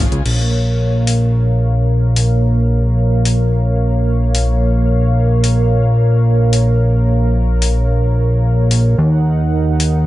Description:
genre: synthwave.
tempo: 110 BPM.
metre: 4/4.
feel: straight.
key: Bb minor.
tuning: A4 = 440 Hz.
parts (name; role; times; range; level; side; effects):
warm analog pad; sustained chords; 0.0-10.1 s; Db3 to Gb5; -20 LUFS; right 1 dB; chorus, tremolo.
fat analog bass; bass; 0.0-10.1 s; Bb1 to Eb2; -13 LUFS; equal; none.
clean 12-bit digital drum machine; drums; 0.1-9.9 s; crash cymbal, hi-hat; -22 LUFS; left 3 dB; none.
room: digital ambience.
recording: nothing above 10.5 kHz.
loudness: -12 LUFS.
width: side -16 dB against mid.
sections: 0.3-10.1 A section.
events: filter sweep on analog synth pad 0.3-10.1.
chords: 0.3 Bbm; 9.0 Ebm.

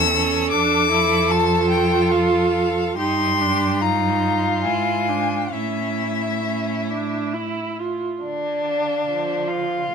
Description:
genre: classical, slow romantic movement for string quartet.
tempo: 65-79 BPM.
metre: 3/4.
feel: rubato.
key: D minor.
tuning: A4 = 440 Hz.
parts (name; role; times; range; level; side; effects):
rich violin; melody; 0.0-9.9 s; E5 to E6; -23 LUFS; left 7 dB; none.
rich violin; second line; 0.0-9.9 s; D4 to A4; -24 LUFS; right 2 dB; none.
rich viola; accompaniment; 0.0-9.9 s; F3 to F4; -24 LUFS; right 3 dB; none.
warm cello; bass; 0.0-9.9 s; E2 to D3; -26 LUFS; right 2 dB; none.
room: light reverb.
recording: minimal, uncompressed stereo recording.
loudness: -18 LUFS.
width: side -6 dB against mid.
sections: 0.0-8.2 A section; 8.2-9.9 B section.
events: none.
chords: 0.0 A/E; 0.5 Dm/F; 3.0 Eb/G; 4.6 E7b9/G#; 5.5 A; 8.2 Dm.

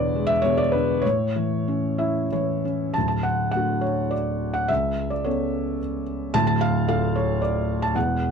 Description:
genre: classical, lyrical solo piano.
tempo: 89-114 BPM.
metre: 3/4.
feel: rubato.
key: unclear.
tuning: A4 = 440 Hz.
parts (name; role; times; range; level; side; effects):
felt-muted upright piano; solo; 0.0-8.3 s; D1 to A5; -21 LUFS; equal; none.
room: moderate small room reverb, RT60 0.5 s.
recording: dark, warm production.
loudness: -21 LUFS.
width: side -6 dB against mid.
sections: 0.0-3.0 A section; 3.0-8.3 B section.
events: felt piano fill 1.7-3.0.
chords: 0.0 E7; 1.0 A; 3.0 D; 4.7 Aadd9/C#; 6.3 Dm.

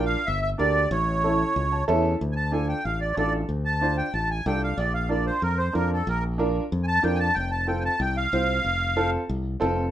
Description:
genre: latin.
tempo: 186 BPM.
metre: 4/4.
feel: straight.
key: D minor.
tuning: A4 = 439 Hz.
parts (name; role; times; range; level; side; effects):
accordion; melody; 0.0-9.1 s; A4 to A5; -25 LUFS; right 1 dB; light tremolo tuning.
clear upright piano; accompaniment; 0.0-9.8 s; C4 to A5; -27 LUFS; right 2 dB; none.
modern bright fingered electric bass; bass; 0.0-9.9 s; F1 to F2; -27 LUFS; left 1 dB; none.
room: moderate studio reverb, RT60 0.8 s.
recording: minimal, uncompressed stereo recording.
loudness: -22 LUFS.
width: side -11 dB against mid.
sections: 0.0-2.2 A section; 2.2-9.9 B section.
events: upright piano fill 1.6-2.2; accordion solo 2.2-9.9.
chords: 0.3 Gm; 0.9 A; 2.2 Dm; 4.8 Bb; 7.4 F.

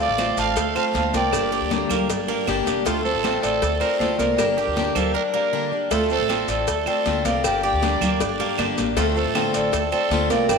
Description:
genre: latin, Cuban son and guajira.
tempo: 157 BPM.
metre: 4/4.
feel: straight.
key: D minor.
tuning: A4 = 438 Hz.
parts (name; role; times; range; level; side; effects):
marimba with medium hard mallets; melody; 0.0-10.6 s; A4 to A5; -25 LUFS; left 2 dB; none.
growling trumpet; second line; 0.0-10.6 s; F4 to F5; -27 LUFS; right 8 dB; none.
picked plugged-in swing-style acoustic guitar; accompaniment; 0.0-10.6 s; D3 to G4; -26 LUFS; left 9 dB; none.
Cuban tres; arpeggios; 0.0-10.6 s; A3 to Bb4; -26 LUFS; right 9 dB; none.
upright bass; bass; 0.0-10.6 s; E1 to D2; -29 LUFS; equal; none.
congas; percussion; 0.0-10.6 s; none; -30 LUFS; left 1 dB; none.
maracas; percussion; 0.0-10.6 s; none; -37 LUFS; right 12 dB; none.
claves; percussion; 0.2-10.6 s; none; -34 LUFS; right 12 dB; none.
cowbell; percussion; 0.2-10.6 s; none; -31 LUFS; left 10 dB; none.
guiro; percussion; 0.2-10.6 s; none; -36 LUFS; right 11 dB; none.
room: wet echo chamber reverb, RT60 2.5 s.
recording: 1960s-style stereo with parts hard left and right.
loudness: -19 LUFS.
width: side -5 dB against mid.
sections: 0.0-5.9 A section; 5.9-10.6 A section.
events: break 5.2-5.9.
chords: 0.0 Dm7; 1.3 Gm; 2.9 Dm7; 4.4 Gm; 5.9 Dm7; 7.4 Gm; 9.0 Dm7.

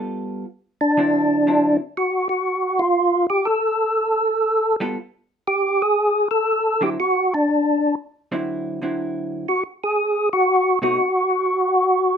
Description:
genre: jazz.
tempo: 120 BPM.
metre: 4/4.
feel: swing 67% on 8ths.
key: D mixolydian.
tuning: A4 = 441 Hz.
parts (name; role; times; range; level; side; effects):
vintage hollow-body jazz guitar; accompaniment; 0.0-1.8, 4.8-11.0 s; B2 to A4; -25 LUFS; right 1 dB; none.
percussive tonewheel organ; melody; 0.8-12.2 s; D4 to A4; -17 LUFS; equal; overdrive, chorus vibrato, slow rotary speaker.
room: moderate studio reverb, RT60 0.6 s.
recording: rough home demo mix.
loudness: -18 LUFS.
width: side -7 dB against mid.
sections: 0.0-12.2 A section.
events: none.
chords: 0.0 G9; 1.0 D9; 3.0 N.C.; 4.0 G9; 5.0 D7#11; 7.0 D9; 11.0 N.C..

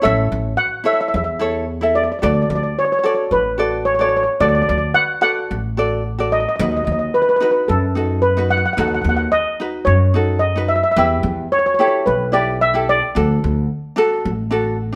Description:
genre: calypso.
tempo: 110 BPM.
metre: 4/4.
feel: straight.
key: D major.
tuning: A4 = 440 Hz.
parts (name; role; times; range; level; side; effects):
steel pan; melody; 0.0-14.8 s; A4 to F#5; -19 LUFS; equal; none.
ukulele; accompaniment; 0.0-15.0 s; D4 to E5; -23 LUFS; equal; none.
upright bass; bass; 0.1-15.0 s; A1 to F#2; -22 LUFS; equal; none.
room: wet studio reverb, RT60 0.9 s.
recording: band playing live in one room.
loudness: -17 LUFS.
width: mono.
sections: 0.0-15.0 A section.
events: none.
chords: 0.0 A; 2.2 D; 6.6 B7/D#; 11.0 Em; 13.2 D.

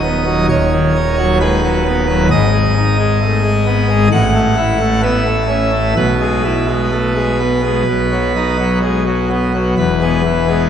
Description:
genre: classical, chorale-style piece for pipe organ.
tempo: 65 BPM.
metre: 4/4.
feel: straight.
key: E major.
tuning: A4 = 440 Hz.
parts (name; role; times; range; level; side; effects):
pipe organ, full organ; solo; 0.0-10.7 s; D#1 to F#5; -12 LUFS; equal; none.
room: wet church reverb, RT60 2.6 s.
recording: nothing above 10.6 kHz.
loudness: -12 LUFS.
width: side -8 dB against mid.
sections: 0.0-9.8 A section.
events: none.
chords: 0.0 B/D#; 2.3 G#m; 4.1 A; 6.0 E/B; 7.9 B; 9.8 E.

